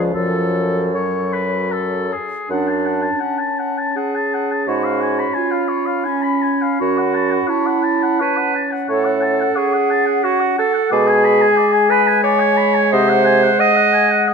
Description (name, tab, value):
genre	classical, slow romantic movement for wind quintet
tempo	72-93 BPM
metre	3/4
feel	rubato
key	F# minor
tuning	A4 = 442 Hz
part	mellow hollow concert flute	melody	0.0-14.3 s	C#5 to B5	-22 LUFS	left 10 dB	none
part	mellow French horn	accompaniment	0.0-14.3 s	E#3 to C#4	-24 LUFS	left 1 dB	none
part	warm bassoon	bass	0.0-13.5 s	C#2 to B#2	-21 LUFS	right 1 dB	none
part	warm oboe	second line	0.1-14.3 s	G#4 to B5	-21 LUFS	left 4 dB	none
part	clear clarinet	accompaniment	0.2-14.3 s	C#4 to D#5	-18 LUFS	right 6 dB	none
room	moderate concert hall reverb, RT60 1.7 s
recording	none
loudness	-14 LUFS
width	side -5 dB against mid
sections	0.0-2.5 A section; 2.5-14.3 B section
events	none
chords	0.1 F#m; 4.7 C#7/G#; 6.8 F#m; 8.9 F#m/A; 10.9 G#dim/B; 12.9 G#7/B#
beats	| 0.14 0.94 1.71 | 2.50 3.20 3.96 | 4.67 5.37 6.06 | 6.82 7.50 8.22 | 8.90 9.58 10.25 | 10.93 11.58 12.24 | 12.93 13.60 14.29